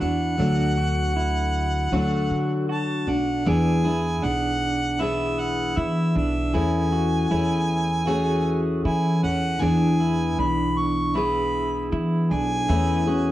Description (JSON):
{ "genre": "acoustic folk duo or small band", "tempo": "78 BPM", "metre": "4/4", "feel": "straight", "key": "E mixolydian", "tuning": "A4 = 440 Hz", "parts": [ { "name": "warm harmonica", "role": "melody", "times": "0.0-13.3 s", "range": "E5 to C#6", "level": "-27 LUFS", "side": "right 1 dB", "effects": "slapback echo" }, { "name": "picked steel-string acoustic guitar", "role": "accompaniment", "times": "0.0-13.3 s", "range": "D3 to G#4", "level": "-26 LUFS", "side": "left 2 dB", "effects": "none" }, { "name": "electric guitar through a small old amp", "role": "arpeggios", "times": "0.0-13.3 s", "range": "C#4 to F#4", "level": "-29 LUFS", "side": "right 3 dB", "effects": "tremolo" }, { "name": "upright bass", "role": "bass", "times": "0.0-13.3 s", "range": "B1 to E3", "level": "-25 LUFS", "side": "equal", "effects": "none" } ], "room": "moderate studio reverb, RT60 0.6 s", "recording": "worn, warbling old tape, cassette tape, warbly pitch drift", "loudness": "-20 LUFS", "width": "side -14 dB against mid", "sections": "0.0-3.5 A section; 3.5-13.3 B section", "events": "none", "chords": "0.4 D; 3.5 E7; 6.5 Amaj7/E; 9.6 E7; 12.7 Amaj7/E" }